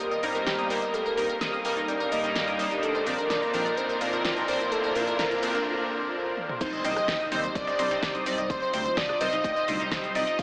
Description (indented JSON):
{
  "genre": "progressive house",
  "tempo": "127 BPM",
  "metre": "4/4",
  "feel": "straight",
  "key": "unclear",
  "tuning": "A4 = 440 Hz",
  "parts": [
    { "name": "soft octave-layered synth lead", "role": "melody", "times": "0.0-10.4 s", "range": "A4 to F5", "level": "-32 LUFS", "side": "equal", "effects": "chorus, diffuse ambient delay" },
    { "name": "warm analog pad", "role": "sustained chords", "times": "0.0-10.4 s", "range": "G3 to F5", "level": "-38 LUFS", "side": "equal", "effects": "chorus, sidechain pumping" },
    { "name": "glassy wavetable pluck", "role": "arpeggios", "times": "0.0-10.4 s", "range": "D4 to Eb6", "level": "-35 LUFS", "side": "equal", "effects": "chorus, cassette tape, sidechain pumping, diffuse ambient delay" },
    { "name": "riser and impact", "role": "sound effects", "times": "0.0-8.5 s", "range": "none", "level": "-41 LUFS", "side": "equal", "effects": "none" },
    { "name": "big-room dance drum kit", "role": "drums", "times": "0.1-10.4 s", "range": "crash cymbal, hi-hat, shaker, snare drum, toms", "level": "-38 LUFS", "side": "equal", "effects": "none" },
    { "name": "chorused polysynth", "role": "stabs", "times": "0.2-10.2 s", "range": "G2 to D5", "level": "-34 LUFS", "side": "equal", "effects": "phaser, sidechain pumping, diffuse ambient delay" },
    { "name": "soft supersaw", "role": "second line", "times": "6.6-10.4 s", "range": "C5 to F5", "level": "-36 LUFS", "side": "equal", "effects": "phaser, sidechain pumping, diffuse ambient delay" },
    { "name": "dark detuned saw bass", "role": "bass", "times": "6.6-10.4 s", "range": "F1 to Eb2", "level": "-43 LUFS", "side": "equal", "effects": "sidechain pumping" },
    { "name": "dusty soul sampler-style drum kit", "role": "drums", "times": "6.6-10.4 s", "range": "ride cymbal, snare drum", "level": "-43 LUFS", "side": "equal", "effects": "none" },
    { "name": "electronic kick drum", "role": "drums", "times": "6.6-10.4 s", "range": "none", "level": "-37 LUFS", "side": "equal", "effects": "none" },
    { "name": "electronic congas, rim click and cowbell", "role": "percussion", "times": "6.6-10.4 s", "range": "none", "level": "-46 LUFS", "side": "equal", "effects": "overdrive, sidechain pumping on perc, sidechain pumping on snare" }
  ],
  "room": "wet huge ambient reverb, RT60 8.3 s",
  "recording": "dreamy mix soaked in reverb, AM radio sound",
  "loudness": "-27 LUFS",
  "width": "mono",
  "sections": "0.0-6.6 A section; 6.6-10.4 B section",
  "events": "build-up 0.0-6.6; filter sweep on soft synth lead 0.0-6.6; break 5.7-6.6; drum fill 6.4; drop 6.6-10.4; impact 6.6-8.5",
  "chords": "0.0 Eb/G; 2.8 Bbadd9; 6.6 Cm",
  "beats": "0.47 | 0.94 1.41 1.88 2.36 | 2.83 3.30 3.77 4.25 | 4.72 5.19 5.66 6.14 | 6.61 7.08 7.55 8.03 | 8.50 8.97 9.44 9.92 | 10.39"
}